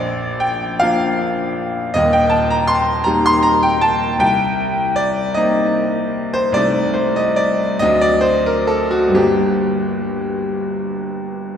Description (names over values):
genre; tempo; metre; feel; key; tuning
classical, romantic character piece for solo piano; 40-54 BPM (dotted quarters); 6/8; rubato; G minor; A4 = 440 Hz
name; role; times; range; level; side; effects
bright grand piano; solo; 0.0-11.6 s; Eb1 to C6; -15 LUFS; equal; none
room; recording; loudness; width
wet concert hall reverb, RT60 2.0 s; heard from further back in the room; -14 LUFS; side -8 dB against mid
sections
0.0-11.6 A section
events
none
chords
0.0 Bb; 2.0 Eb; 4.2 Cm7; 6.6 Adim/C; 7.8 D7; 9.2 Gm